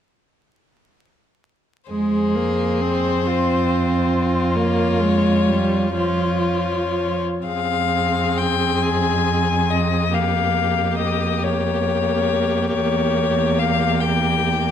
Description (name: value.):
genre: classical, slow romantic movement for string quartet.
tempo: 38-47 BPM (dotted quarters).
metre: 6/8.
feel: rubato.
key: F minor.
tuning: A4 = 441 Hz.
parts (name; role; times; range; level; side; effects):
rich violin; melody; 1.9-14.7 s; C5 to Ab5; -22 LUFS; left 8 dB; none.
warm violin; second line; 1.9-14.7 s; F4 to Ab4; -26 LUFS; left 2 dB; none.
rich viola; accompaniment; 1.9-14.7 s; F3 to C4; -22 LUFS; right 2 dB; none.
rich cello; bass; 1.9-14.7 s; E2 to F2; -23 LUFS; right 3 dB; none.
room: moderate recital hall reverb, RT60 1.7 s.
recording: close, detailed microphones, vinyl crackle.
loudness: -17 LUFS.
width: side -9 dB against mid.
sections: 1.9-7.5 A section; 7.5-14.7 B section.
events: none.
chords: 1.9 Fm; 4.6 Bbm/F; 7.5 Fm; 10.1 Gm7b5/F; 12.7 Edim7.